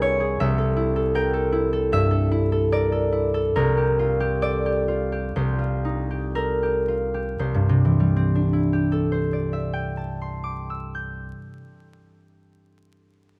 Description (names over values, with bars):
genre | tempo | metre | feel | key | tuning
classical, solo harp piece | 55-81 BPM | 4/4 | rubato | C mixolydian | A4 = 441 Hz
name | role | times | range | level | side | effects
concert harp | solo | 0.0-12.8 s | C2 to G6 | -23 LUFS | equal | none
room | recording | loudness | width
moderate recital hall reverb, RT60 1.8 s | close, detailed microphones, vinyl crackle | -23 LUFS | mono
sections
0.0-7.4 A section; 7.4-11.3 B section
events
slowing down 0.0-7.4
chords
0.4 C69; 3.6 Ebadd9/C; 7.4 C69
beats
| 0.38 1.14 1.91 2.72 | 3.56 4.43 5.35 6.35 | 7.40 8.37 9.35 10.34